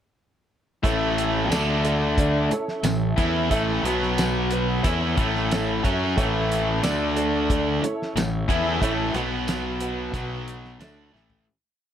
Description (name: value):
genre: classic rock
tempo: 91 BPM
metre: 4/4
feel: straight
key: A major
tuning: A4 = 439 Hz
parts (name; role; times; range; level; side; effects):
- warm upright piano; accompaniment; 0.8-11.3 s; B3 to F#5; -32 LUFS; right 3 dB; none
- tonewheel organ; sustained chords; 0.8-11.5 s; C#4 to A5; -35 LUFS; equal; none
- cranked stack guitar; riff; 0.8-11.4 s; A2 to F#4; -26 LUFS; left 7 dB; overdrive
- cranked stack guitar; riff; 0.8-11.5 s; A2 to F#4; -26 LUFS; right 7 dB; overdrive
- fuzz fingered electric bass; bass; 0.8-11.4 s; A1 to F#2; -29 LUFS; equal; overdrive
- damped 70s drum kit; drums; 0.8-11.4 s; hi-hat, kick drum, snare drum, tambourine, toms; -26 LUFS; equal; none
room: moderate studio ambience, RT60 0.5 s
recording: none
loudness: -21 LUFS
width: side -9 dB against mid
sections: 0.8-11.5 riff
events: fade-out 8.8-11.5; drum fill 11.1-11.5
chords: 0.8 A; 1.5 D5; 2.5 A; 3.8 B5; 4.8 A; 6.8 D5; 7.8 A; 9.1 B5; 10.8 A